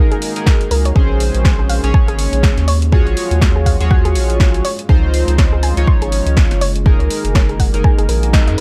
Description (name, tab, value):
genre	deep house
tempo	122 BPM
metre	4/4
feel	swing 58% on 16ths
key	unclear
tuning	A4 = 440 Hz
part	deep dark ambient pad	sustained chords	0.0-8.6 s	Gb3 to C6	-32 LUFS	equal	chorus, built-in reverb, sidechain pumping
part	chorused polysynth	stabs	0.0-8.6 s	Db4 to Db5	-23 LUFS	equal	sidechain pumping, digital delay
part	soft round pluck	arpeggios	0.1-8.6 s	Ab4 to C6	-28 LUFS	equal	chorus, sidechain pumping, digital delay
part	punchy analog drum machine	drums	0.1-8.6 s	hi-hat, snare drum	-25 LUFS	equal	none
part	electronic kick drum	drums	0.5-8.4 s	none	-15 LUFS	equal	overdrive
part	round analog bass	bass	0.7-8.6 s	Gb1 to Gb2	-18 LUFS	equal	sidechain pumping
room	little or no reverb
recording	dark, warm production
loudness	-14 LUFS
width	mono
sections	0.0-8.6 A section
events	band accent 8.3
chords	0.0 Gb69; 1.0 Bbm9; 2.7 Ebm11; 4.6 Dbmaj7; 6.6 Gb69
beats	0.46 | 0.96 1.45 1.94 2.43 | 2.92 3.42 3.91 4.40 | 4.89 5.38 5.87 6.37 | 6.86 7.35 7.84 8.33